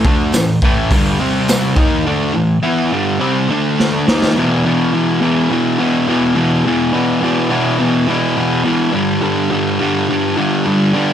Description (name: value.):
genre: garage rock duo or trio.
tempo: 105 BPM.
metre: 4/4.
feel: straight.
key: unclear.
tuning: A4 = 440 Hz.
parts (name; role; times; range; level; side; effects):
fuzz guitar; riff; 0.0-11.1 s; E2 to E4; -13 LUFS; equal; distortion.
raw garage drum kit; drums; 0.0-4.3 s; hi-hat, kick drum, snare drum; -16 LUFS; equal; none.
tambourine; percussion; 0.3-1.6 s; none; -25 LUFS; right 4 dB; none.
room: light reverb.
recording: none.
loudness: -13 LUFS.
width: side -9 dB against mid.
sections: 0.0-4.3 A section; 4.3-11.1 B section.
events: drum fill 3.8-4.3.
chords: 0.0 A5; 1.2 C5; 1.8 A5; 3.5 D5; 4.1 D#5; 4.3 E5; 8.9 G5.